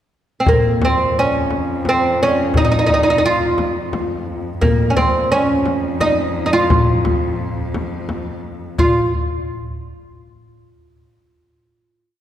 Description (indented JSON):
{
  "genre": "Arabic maqam ensemble",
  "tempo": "87 BPM",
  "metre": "3/4",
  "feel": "straight",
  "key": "unclear",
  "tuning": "A4 = 439 Hz",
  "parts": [
    { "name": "oud", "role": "melody", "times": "0.4-9.1 s", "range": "Bb3 to F4", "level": "-16 LUFS", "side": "right 1 dB", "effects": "none" },
    { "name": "muted cello", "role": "drone", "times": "0.5-8.9 s", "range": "F2", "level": "-26 LUFS", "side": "left 2 dB", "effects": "none" },
    { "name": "darbuka", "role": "percussion", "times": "0.5-9.1 s", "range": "none", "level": "-23 LUFS", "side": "left 1 dB", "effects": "none" },
    { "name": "frame drum", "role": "percussion", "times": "0.5-9.1 s", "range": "none", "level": "-22 LUFS", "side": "left 1 dB", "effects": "none" }
  ],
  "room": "wet concert hall reverb, RT60 2.4 s",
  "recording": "recorded in a church or concert hall",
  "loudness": "-15 LUFS",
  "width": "side -11 dB against mid",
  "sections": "0.0-0.5 pickup bar; 0.5-8.8 A section; 8.8-10.9 final note",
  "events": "none",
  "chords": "none"
}